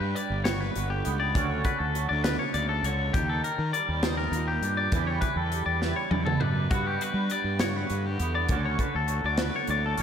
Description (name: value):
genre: math rock and midwest emo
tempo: 67 BPM (dotted quarters)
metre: 6/8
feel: straight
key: G lydian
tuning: A4 = 440 Hz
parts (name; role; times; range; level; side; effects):
- twangy electric guitar; accompaniment; 0.0-10.0 s; G2 to B4; -33 LUFS; right 7 dB; analog chorus, slapback echo
- twangy electric guitar; arpeggios; 0.0-10.0 s; F#4 to D5; -30 LUFS; left 5 dB; slapback echo
- fuzz fingered electric bass; bass; 0.0-10.0 s; G1 to G3; -30 LUFS; equal; overdrive
- modern studio drum kit; drums; 0.2-10.0 s; hi-hat, kick drum, snare drum, toms; -30 LUFS; equal; none
room: moderate lush hall reverb, RT60 1.9 s, studio ambience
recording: big arena sound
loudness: -25 LUFS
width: side -8 dB against mid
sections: 0.0-10.0 A section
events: drum fill 5.8-6.7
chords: 0.0 Gmaj7; 1.3 Dmaj7; 3.1 Ebmaj7; 4.9 Em7; 6.7 Gmaj7; 8.5 Dmaj7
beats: 0.45 | 1.35 2.24 | 3.14 4.03 | 4.92 5.82 | 6.71 7.60 | 8.49 9.38